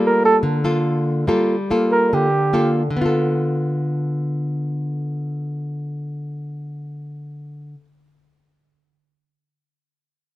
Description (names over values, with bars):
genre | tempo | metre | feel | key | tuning
bossa nova | 143 BPM | 4/4 | straight | D minor | A4 = 441 Hz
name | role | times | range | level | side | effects
nylon-string guitar | accompaniment | 0.0-7.9 s | D3 to A4 | -20 LUFS | left 1 dB | none
mellow flugelhorn | melody | 0.1-2.8 s | G4 to Bb4 | -18 LUFS | right 2 dB | none
room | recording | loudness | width
light reverb | none | -18 LUFS | side -16 dB against mid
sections
0.0-3.0 A section; 3.0-6.3 B section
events
flugelhorn solo 0.0-3.0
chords
0.0 Gm9; 3.0 Dm6